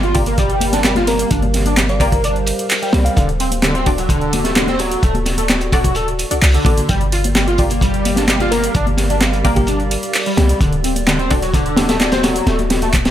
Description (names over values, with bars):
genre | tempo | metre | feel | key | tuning
breakbeat, breaks | 129 BPM | 4/4 | straight | unclear | A4 = 440 Hz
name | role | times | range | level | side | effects
warbly tape-like pad | sustained chords | 0.0-13.1 s | G3 to F5 | -25 LUFS | equal | chorus, built-in reverb, sidechain pumping
overdriven synth lead | riff | 0.0-12.9 s | D3 to F4 | -20 LUFS | equal | ensemble chorus, dub echo
warm 808-style bass | bass | 0.0-13.1 s | D1 to C2 | -19 LUFS | equal | none
punchy analog drum machine | drums | 0.0-13.1 s | handclaps, hi-hat, ride cymbal | -22 LUFS | right 1 dB | overdrive
filtered dub chord stab | stabs | 0.1-11.4 s | D4 to D5 | -26 LUFS | left 2 dB | phaser, dub echo
crunchy breakbeat drum kit | drums | 0.1-13.1 s | hi-hat, kick drum, snare drum | -18 LUFS | equal | none
congas | percussion | 0.6-12.9 s | none | -27 LUFS | left 5 dB | none
bell-like FM electric piano | melody | 1.1-3.2, 8.5-10.7 s | G4 to F5 | -26 LUFS | equal | chorus, small speaker sound, vintage 12-bit sampler grit, dub echo
room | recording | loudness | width
small room ambience | none | -13 LUFS | side -11 dB against mid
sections
0.0-13.1 A section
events
none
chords
0.0 Gm7; 3.2 D; 6.9 Gm7; 10.6 D